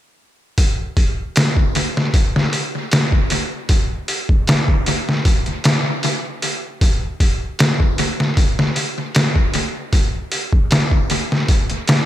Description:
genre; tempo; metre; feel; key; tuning
trip hop; 77 BPM; 4/4; swing 53% on 16ths; none; none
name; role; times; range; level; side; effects
trip hop sampler-style drum kit; drums; 0.6-12.1 s; hi-hat, kick drum, snare drum; -15 LUFS; equal; overdrive, tape echo
room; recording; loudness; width
light reverb; echo-heavy mix; -15 LUFS; side -13 dB against mid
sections
0.6-12.1 A section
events
none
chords
none

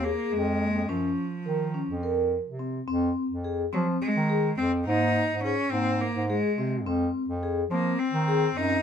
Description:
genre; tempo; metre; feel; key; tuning
contemporary instrumental, chamber music in an uneven meter; 211 BPM (eighths); 7/8; straight; F phrygian; A4 = 440 Hz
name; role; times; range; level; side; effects
bright cello; melody; 0.0-8.8 s; F3 to Eb4; -29 LUFS; equal; none
vibraphone with medium mallets; arpeggios; 0.0-8.7 s; Bb3 to Bb4; -29 LUFS; left 2 dB; none
mellow bass clarinet; bass; 0.0-8.8 s; Eb2 to F3; -28 LUFS; right 1 dB; none
room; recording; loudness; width
light reverb; none; -24 LUFS; side -8 dB against mid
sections
0.0-2.9 A section; 2.9-8.8 B section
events
none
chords
0.0 Fm7; 0.9 Gbmaj7; 2.9 Fm7; 4.9 Absus2; 6.9 Fm7

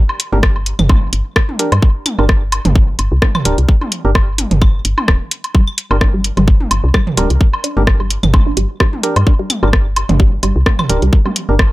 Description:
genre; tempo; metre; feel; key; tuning
minimal techno; 129 BPM; 4/4; swing 55% on 16ths; G minor; A4 = 440 Hz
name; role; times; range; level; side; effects
electronic woodblock, toms and claves; percussion; 0.1-11.7 s; none; -20 LUFS; right 1 dB; none
garage drum kit; drums; 0.2-11.7 s; hi-hat, rim click; -17 LUFS; equal; none
percussive organ stab; stabs; 0.3-11.5 s; D4 to Bb4; -20 LUFS; right 2 dB; chorus, tape echo
woody FM bass; bass; 0.3-11.7 s; D1 to G2; -15 LUFS; equal; sidechain pumping
electronic kick drum; drums; 0.4-11.7 s; none; -11 LUFS; equal; none
resonant blip pluck; riff; 5.5-11.3 s; G3 to D4; -22 LUFS; right 1 dB; phaser, sidechain pumping, tape echo
room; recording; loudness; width
little or no reverb; none; -11 LUFS; side -18 dB against mid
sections
0.0-11.7 A section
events
none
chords
0.0 Gm

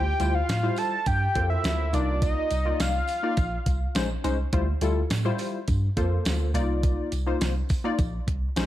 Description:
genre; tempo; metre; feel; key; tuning
early-eighties boogie funk; 104 BPM; 4/4; straight; unclear; A4 = 440 Hz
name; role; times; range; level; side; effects
fat analog lead; melody; 0.0-4.0 s; D5 to A5; -28 LUFS; equal; phaser, slapback echo
funky polysynth comp; accompaniment; 0.0-8.7 s; G3 to D5; -30 LUFS; left 2 dB; chorus
mellow tine electric piano; bass; 0.0-8.7 s; Bb1 to A2; -26 LUFS; equal; slow stereo tremolo
clean 12-bit digital drum machine; drums; 0.2-8.7 s; hi-hat, kick drum, snare drum; -28 LUFS; equal; none
tambourine; percussion; 0.2-8.7 s; none; -44 LUFS; right 9 dB; none
room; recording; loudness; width
light reverb; dark, warm production; -23 LUFS; side -13 dB against mid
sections
0.0-8.7 A section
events
none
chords
0.0 Dm11; 1.1 Gm11; 1.9 Cm11; 3.4 Bbm11; 4.5 Dm11; 5.7 Gm11; 6.5 Cm11; 8.0 Bbm11

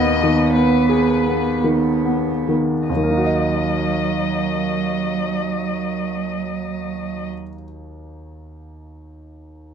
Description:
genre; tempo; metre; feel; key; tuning
classical, slow romantic movement for piano trio; 45-65 BPM; 3/4; rubato; Eb minor; A4 = 440 Hz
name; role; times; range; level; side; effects
muted violin; melody; 0.0-7.3 s; Cb5 to Eb5; -25 LUFS; left 6 dB; none
muted cello; second line; 0.0-7.3 s; Gb3 to Cb4; -23 LUFS; right 9 dB; none
bright baby grand piano; accompaniment; 0.0-9.7 s; Eb2 to Eb5; -21 LUFS; left 1 dB; none
room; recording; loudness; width
light reverb; none; -17 LUFS; side -7 dB against mid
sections
0.0-2.9 A section; 2.9-9.7 B section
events
slowing down 0.0-2.9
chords
0.0 Abm/Eb; 2.9 Ebm

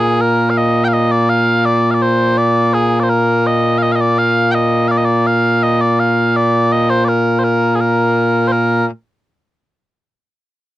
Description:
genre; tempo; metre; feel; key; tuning
scottish traditional, Scottish pipe music; 83 BPM; 2/4; straight; Bb mixolydian; A4 = 440 Hz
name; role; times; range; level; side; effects
mellow small bagpipes; solo; 0.0-8.9 s; Bb2 to G5; -12 LUFS; equal; none
room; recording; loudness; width
light reverb; dry, close 1970s-style studio recording; -12 LUFS; side -15 dB against mid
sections
0.0-8.5 A section; 8.5-10.0 B section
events
none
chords
none

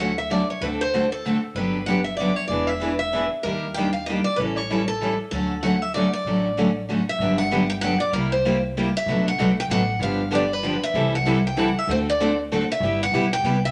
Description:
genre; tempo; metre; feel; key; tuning
acoustic string swing (jazz manouche); 192 BPM; 3/4; swing 60% on 8ths; D major, G major from 7.2 s; A4 = 440 Hz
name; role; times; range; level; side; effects
picked steel-string acoustic guitar; melody; 0.0-13.7 s; A4 to G5; -27 LUFS; equal; none
picked steel-string acoustic guitar; accompaniment; 0.0-13.6 s; B2 to A4; -26 LUFS; equal; none
picked steel-string acoustic guitar; accompaniment; 0.0-13.6 s; B2 to B4; -32 LUFS; equal; none
upright bass; bass; 0.0-13.7 s; E1 to Eb2; -33 LUFS; equal; none
room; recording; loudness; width
moderate studio reverb, RT60 0.9 s; none; -23 LUFS; mono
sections
0.0-7.2 A section; 7.2-13.7 B section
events
none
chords
0.0 Dmaj7; 0.6 D7; 1.6 Gmaj7; 2.5 E7; 3.4 Ebmaj7; 4.4 A7; 5.3 Dmaj7; 7.2 Gmaj7; 8.1 C7; 9.1 Bm7; 10.0 G7; 10.9 C6; 11.9 D7; 12.8 G6

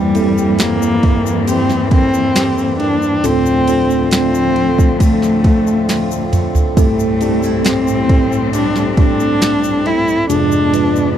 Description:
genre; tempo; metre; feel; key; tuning
pop ballad; 68 BPM; 4/4; straight; C major; A4 = 440 Hz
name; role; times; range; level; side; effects
dark cello; melody; 0.0-11.1 s; G3 to E4; -16 LUFS; equal; none
warm symphonic cello section; second line; 0.0-11.2 s; F2 to C4; -20 LUFS; left 6 dB; none
mellow tine electric piano; accompaniment; 0.0-11.2 s; C2 to B4; -19 LUFS; right 2 dB; medium stereo tremolo
warm French horn section; sustained chords; 0.0-11.2 s; E2 to A4; -26 LUFS; left 1 dB; none
fingerpicked steel-string acoustic guitar; arpeggios; 0.0-11.2 s; F2 to G4; -26 LUFS; right 11 dB; none
smooth R&B drum kit; drums; 0.1-10.9 s; kick drum, ride cymbal, snare drum, toms; -14 LUFS; equal; none
tube shaker; percussion; 0.2-11.2 s; none; -31 LUFS; left 27 dB; none
room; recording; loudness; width
little or no reverb; dry, close 1970s-style studio recording; -12 LUFS; side -10 dB against mid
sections
0.0-11.2 A section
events
drum fill 5.9-6.8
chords
0.0 C7/E; 3.2 Dm7; 6.8 C6; 10.3 Fm6

